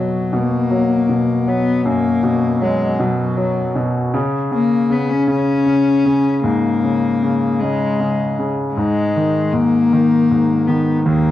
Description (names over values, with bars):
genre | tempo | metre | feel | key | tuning
pop | 52 BPM (dotted quarters) | 6/8 | straight | unclear | A4 = 440 Hz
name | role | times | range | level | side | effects
warm cello | melody | 0.0-11.3 s | F#3 to C#4 | -16 LUFS | left 3 dB | cassette tape
clear concert grand piano | accompaniment | 0.0-11.3 s | D#2 to F#3 | -18 LUFS | right 1 dB | cassette tape
room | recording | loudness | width
wet booth ambience, RT60 0.3 s | home recording on cassette | -14 LUFS | side -13 dB against mid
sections
0.0-11.3 A section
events
none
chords
0.0 B5; 4.1 C#5; 8.8 G#5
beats
0.71 | 1.86 3.00 | 4.14 5.29 | 6.44 7.60 | 8.76 9.91 | 11.06